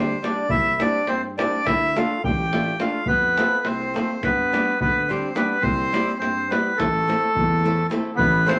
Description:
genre	balkan folk, Balkan wedding band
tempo	211 BPM (eighths)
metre	9/8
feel	straight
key	A minor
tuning	A4 = 440 Hz
part	accordion	melody	0.0-8.6 s	A4 to G5	-24 LUFS	equal	none
part	growling trumpet	second line	0.0-8.6 s	A3 to G4	-32 LUFS	equal	none
part	flamenco guitar	accompaniment	0.0-8.6 s	G3 to C5	-30 LUFS	equal	none
part	dark tuba	bass	0.0-8.5 s	A1 to G2	-30 LUFS	equal	none
part	davul	percussion	0.2-8.6 s	none	-29 LUFS	equal	none
room	wet studio reverb, RT60 0.6 s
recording	none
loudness	-22 LUFS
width	mono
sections	0.0-8.2 A section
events	none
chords	0.5 C; 1.6 Dm; 3.1 F; 4.2 G; 5.6 C; 6.8 Am

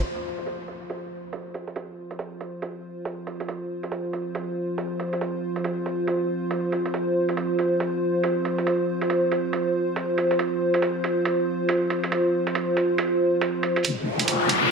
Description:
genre	deep dubstep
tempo	139 BPM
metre	4/4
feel	swing 61% on 16ths, half-time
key	unclear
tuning	A4 = 440 Hz
part	dark analog pad	sustained chords	0.0-14.7 s	F4 to C5	-24 LUFS	right 1 dB	chorus
part	electronic hi-hat	drums	0.0-14.6 s	none	-30 LUFS	right 6 dB	low-pass filter on hats, studio reverb, low-pass filter on snare
part	deep soft wobble bass	bass	13.8-14.7 s	F1	-28 LUFS	left 1 dB	chorus, high-pass filter
part	riser	sound effects	14.0-14.7 s	none	-22 LUFS	left 3 dB	none
room	moderate huge ambient reverb, RT60 4.2 s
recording	dense, heavily limited modern master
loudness	-23 LUFS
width	side -5 dB against mid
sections	0.0-13.8 A section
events	riser 14.0-14.7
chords	0.0 F5

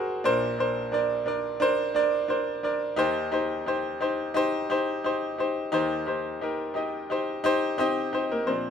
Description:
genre	pop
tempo	87 BPM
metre	4/4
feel	swing 56% on 16ths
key	unclear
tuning	A4 = 444 Hz
part	bright grand piano	solo	0.0-8.7 s	Gb1 to Eb5	-24 LUFS	equal	ping-pong delay
room	moderate studio reverb, RT60 0.5 s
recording	rough home demo mix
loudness	-24 LUFS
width	side -7 dB against mid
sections	0.0-5.7 A section; 5.7-8.5 B section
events	none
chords	0.2 Bbadd9; 3.0 Eb6

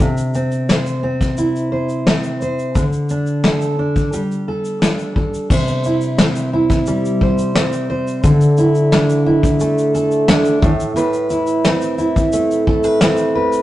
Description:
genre	acoustic pop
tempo	88 BPM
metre	4/4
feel	straight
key	C major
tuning	A4 = 435 Hz
part	fingerpicked steel-string acoustic guitar	accompaniment	0.0-13.6 s	A2 to C5	-15 LUFS	equal	none
part	vintage brush drum kit	drums	0.0-13.6 s	crash cymbal, kick drum, shaker, snare drum	-17 LUFS	left 1 dB	none
room	wet stone room reverb, RT60 1.0 s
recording	rough rehearsal-room recording, tube saturation, nothing above 10.3 kHz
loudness	-14 LUFS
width	side -14 dB against mid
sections	0.0-5.5 A section; 5.5-13.6 B section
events	none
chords	0.0 C; 2.8 D5; 4.1 Gsus2; 5.5 C; 8.2 Dsus2; 10.6 Amadd9

